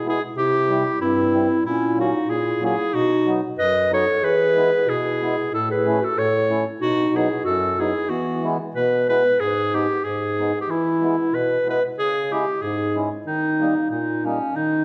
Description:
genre	alpine folk, alpine dance band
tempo	93 BPM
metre	2/4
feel	swing 54% on 8ths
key	E major, G# harmonic minor from 9.4 s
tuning	A4 = 440 Hz
part	warm clarinet	melody	0.0-14.8 s	C#4 to D#5	-23 LUFS	equal	none
part	dark clarinet	second line	0.0-9.4 s	B3 to B4	-28 LUFS	equal	none
part	mellow accordion	accompaniment	0.0-14.8 s	F#2 to E4	-27 LUFS	equal	none
room	wet recital hall reverb, RT60 1.4 s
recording	recorded in a church or concert hall, lossy compression artefacts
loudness	-21 LUFS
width	mono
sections	0.0-9.4 A section; 9.4-14.8 B section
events	none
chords	0.3 C; 1.6 F#/A#; 2.9 B; 4.2 E; 5.5 A; 6.8 B; 8.1 E; 9.4 G#m; 10.7 E; 12.0 C#m; 13.3 D#

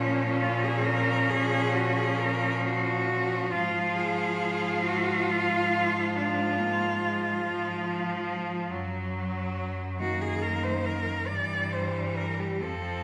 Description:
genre	classical, lyrical piece for cello ensemble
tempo	46 BPM (dotted quarters)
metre	12/8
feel	rubato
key	Bb minor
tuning	A4 = 440 Hz
part	clear cello	melody	0.0-13.0 s	Db4 to D5	-32 LUFS	equal	none
part	bright cello	second line	0.0-13.0 s	F3 to F4	-33 LUFS	equal	none
part	rich cello	accompaniment	0.0-13.0 s	Eb3 to Gb3	-36 LUFS	equal	none
part	rich cello	bass	0.0-13.0 s	F2 to Bb2	-34 LUFS	equal	none
room	wet scoring stage reverb, RT60 1.5 s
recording	none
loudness	-28 LUFS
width	mono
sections	0.0-13.0 A section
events	none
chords	0.0 Bbm; 3.5 Bb7(no3)/Ab (rootless); 8.7 Ebm/Gb; 11.3 G5

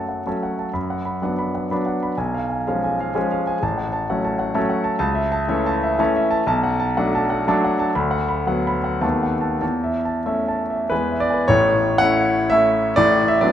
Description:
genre	classical, romantic triple-time dance for piano with dotted rhythms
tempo	90-135 BPM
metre	3/4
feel	rubato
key	F# minor, A major from 5.0 s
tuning	A4 = 440 Hz
part	warm concert grand piano	solo	0.0-13.5 s	A1 to B5	-18 LUFS	equal	none
room	wet recital hall reverb, RT60 1.6 s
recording	none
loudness	-18 LUFS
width	side -10 dB against mid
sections	0.0-11.5 A section; 11.5-13.5 B section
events	none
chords	0.0 F#m; 0.7 Bm/F#; 2.2 C#7/B; 3.6 F#m/A; 5.0 A/C#; 6.5 Bm7; 7.9 Bm/D; 9.0 B7/D#; 9.6 A/E; 10.9 E; 11.5 A; 13.0 Bm/A

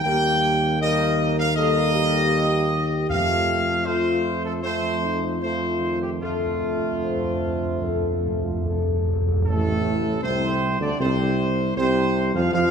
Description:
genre	classical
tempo	77 BPM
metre	4/4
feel	uneven beats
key	F mixolydian, F major from 9.5 s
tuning	A4 = 438 Hz
part	warm trumpet section	melody	0.0-12.7 s	F4 to G5	-25 LUFS	equal	none
part	warm trombone section	sustained chords	0.0-12.7 s	A2 to Bb3	-28 LUFS	right 2 dB	none
part	mellow tuba	bass	0.0-12.7 s	A1 to F2	-25 LUFS	right 1 dB	none
part	mellow French horn section	sustained chords	0.1-12.7 s	A3 to C5	-27 LUFS	left 5 dB	none
part	timpani	percussion	3.1-10.6 s	F2	-27 LUFS	right 1 dB	none
room	wet scoring stage reverb, RT60 2.1 s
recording	minimal, uncompressed stereo recording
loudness	-20 LUFS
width	side -7 dB against mid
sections	0.0-9.5 A section; 9.5-12.7 B section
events	timpani fill 6.2-9.5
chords	0.0 Eb; 3.1 F; 6.2 F6; 9.5 F/A

